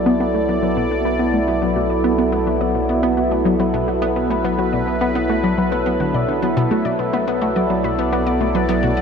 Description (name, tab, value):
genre	ambient, sequencer-driven space music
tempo	106 BPM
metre	4/4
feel	straight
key	B minor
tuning	A4 = 440 Hz
part	sweeping resonant pad	sustained chords	0.0-9.0 s	F#3 to D5	-19 LUFS	equal	chorus, phaser
part	wide unison pluck	arpeggios	0.0-9.0 s	B3 to D5	-27 LUFS	left 2 dB	auto-pan, cassette tape, ping-pong delay
part	round analog bass	bass	0.0-9.0 s	B1	-28 LUFS	equal	none
part	tight sequenced synth	riff	0.1-8.9 s	B2 to B3	-21 LUFS	left 1 dB	chorus, ping-pong delay
room	wet huge ambient reverb, RT60 9.1 s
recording	in a vast, echoing space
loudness	-16 LUFS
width	side -6 dB against mid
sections	0.0-9.0 A section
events	none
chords	0.0 Bm